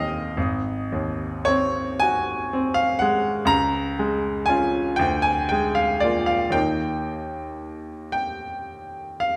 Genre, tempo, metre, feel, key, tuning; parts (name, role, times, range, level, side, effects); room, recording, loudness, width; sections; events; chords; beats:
classical, romantic nocturne for solo piano; 35-42 BPM (dotted quarters); 6/8; rubato; Ab major; A4 = 440 Hz
bright baby grand piano; solo; 0.0-9.4 s; Ab1 to Bb5; -24 LUFS; equal
wet recital hall reverb, RT60 1.4 s; -23 LUFS; mono
0.0-9.4 A section
0.4 Ab7; 3.5 Db; 5.0 Bb7/D; 6.5 Eb
| 0.36 2.02 | 3.50 4.99 | 6.55 8.14